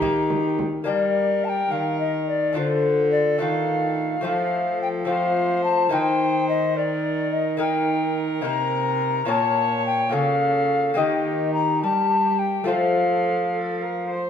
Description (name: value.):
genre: classical, renaissance-style consort dance.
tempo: 71 BPM (dotted quarters).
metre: 6/8.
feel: straight.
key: unclear.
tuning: A4 = 443 Hz.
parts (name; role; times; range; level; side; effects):
mellow hollow tenor recorder; melody; 0.0-14.1 s; C5 to Bb5; -23 LUFS; left 3 dB; none.
dark viola; second line; 0.0-14.3 s; G4 to Db5; -28 LUFS; right 3 dB; none.
lute; accompaniment; 0.0-14.3 s; Bb2 to Eb5; -26 LUFS; left 4 dB; none.
rich cello; bass; 0.0-14.2 s; Bb2 to G3; -27 LUFS; right 3 dB; none.
frame drum; percussion; 0.0-0.9 s; none; -32 LUFS; right 4 dB; none.
room: wet stone room reverb, RT60 1.3 s.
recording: minimal, uncompressed stereo recording.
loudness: -20 LUFS.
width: side -8 dB against mid.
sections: 0.9-14.3 A section.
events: none.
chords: 0.0 Eb; 0.9 Gm; 2.6 Dm; 4.2 F; 5.9 Eb; 9.3 Bbm; 11.0 Eb; 12.7 F.